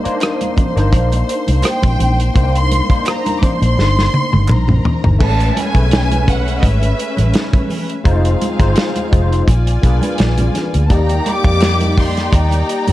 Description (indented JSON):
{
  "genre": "lush 1970s-style soul",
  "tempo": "84 BPM",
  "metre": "4/4",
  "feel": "swing 54% on 16ths",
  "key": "unclear",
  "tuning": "A4 = 440 Hz",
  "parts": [
    { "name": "rich studio string section", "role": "second line", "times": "0.0-12.9 s", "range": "C4 to C6", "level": "-25 LUFS", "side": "equal", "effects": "none" },
    { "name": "overdriven tine electric piano", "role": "accompaniment", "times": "0.0-12.9 s", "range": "G#3 to D5", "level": "-21 LUFS", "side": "left 3 dB", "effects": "ensemble chorus" },
    { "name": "vintage muted fingered electric bass", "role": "bass", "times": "0.1-12.9 s", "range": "F1 to G2", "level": "-15 LUFS", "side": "equal", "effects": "none" },
    { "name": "warm soul drum kit", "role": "drums", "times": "0.1-12.9 s", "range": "crash cymbal, hi-hat, kick drum, rim click, snare drum, toms", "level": "-16 LUFS", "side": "equal", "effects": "none" },
    { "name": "congas", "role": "percussion", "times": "0.2-12.9 s", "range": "none", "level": "-25 LUFS", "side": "right 3 dB", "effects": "none" },
    { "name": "group handclap", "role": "percussion", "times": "0.2-4.7, 11.6-11.8 s", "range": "none", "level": "-34 LUFS", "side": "right 3 dB", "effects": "none" },
    { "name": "warm studio violin section", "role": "melody", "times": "1.7-12.9 s", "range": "Eb5 to D6", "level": "-21 LUFS", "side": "equal", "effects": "none" },
    { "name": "warm horn section", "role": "stabs", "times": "10.9-12.9 s", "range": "G3 to G4", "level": "-24 LUFS", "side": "right 1 dB", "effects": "none" }
  ],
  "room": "light reverb, small room ambience",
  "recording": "dark, warm production",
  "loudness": "-12 LUFS",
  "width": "side -15 dB against mid",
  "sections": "0.0-5.2 A section; 5.2-12.9 B section",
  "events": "drum fill 3.8-5.2",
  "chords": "0.0 Cm9; 5.2 Amaj9; 8.1 Fm7; 9.5 Bb7b9; 10.9 Ebmaj7"
}